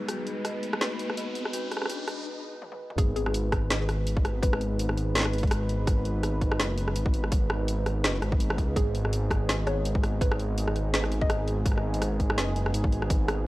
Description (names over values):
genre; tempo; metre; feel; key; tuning
half-time drum and bass; 166 BPM; 4/4; swing 56% on 16ths, half-time; G# minor; A4 = 441 Hz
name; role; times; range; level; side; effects
dark analog pad; sustained chords; 0.0-13.5 s; G#3 to B4; -34 LUFS; right 1 dB; chorus, sidechain pumping
dark detuned synth bell; arpeggios; 0.0-3.0 s; F#4 to D#5; -40 LUFS; left 3 dB; chorus, low-pass filter, tape echo
riser; sound effects; 0.0-2.3 s; none; -37 LUFS; left 2 dB; none
drum and bass drum kit; drums; 0.1-13.4 s; hi-hat, rim click, snare drum, toms; -30 LUFS; equal; overdrive, studio reverb
mallet-like synth pluck; melody; 3.0-4.8, 8.8-11.5 s; G#4 to D#5; -36 LUFS; left 1 dB; chorus, phaser, tape echo
dark detuned saw bass; bass; 3.0-13.5 s; F#1 to C#2; -28 LUFS; equal; none
electronic kick drum; drums; 3.0-13.2 s; none; -26 LUFS; equal; overdrive, studio reverb
room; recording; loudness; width
little or no reverb; dry, gritty hardware recording, cassette tape, high-pass filter; -25 LUFS; side -18 dB against mid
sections
0.0-3.0 A section; 3.0-13.5 B section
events
build-up 0.0-3.0; riser 0.0-2.3; filter sweep on synth bell 0.0-3.0; filter sweep on synth pluck 0.0-3.0; break 2.3-3.0; drum fill 2.6-3.0; drop 3.0-13.5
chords
0.0 G#m